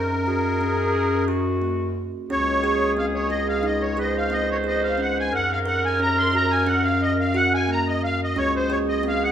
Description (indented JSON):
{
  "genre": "contemporary instrumental, chamber music in an uneven meter",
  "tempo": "178 BPM (eighths)",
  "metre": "9/8",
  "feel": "straight",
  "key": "unclear",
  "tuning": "A4 = 437 Hz",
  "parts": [
    { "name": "musette accordion", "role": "melody", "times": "0.0-9.3 s", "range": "Bb4 to C6", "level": "-24 LUFS", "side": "equal", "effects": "none" },
    { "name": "kalimba", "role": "arpeggios", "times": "0.0-9.3 s", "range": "Bb3 to Bb4", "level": "-26 LUFS", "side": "right 1 dB", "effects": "none" },
    { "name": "warm bass clarinet", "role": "bass", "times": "0.0-9.3 s", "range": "Db2 to Gb2", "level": "-26 LUFS", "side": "left 1 dB", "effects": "none" },
    { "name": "growling clarinet", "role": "second line", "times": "0.3-9.3 s", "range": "Gb4 to C5", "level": "-26 LUFS", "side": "equal", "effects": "none" }
  ],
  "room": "moderate recital hall reverb, RT60 1.4 s",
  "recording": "minimal, uncompressed stereo recording",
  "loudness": "-20 LUFS",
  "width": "side -9 dB against mid",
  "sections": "0.0-9.3 A section",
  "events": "none",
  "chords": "0.0 Gb; 2.3 Dbsus2; 5.3 Gb; 8.4 Db5"
}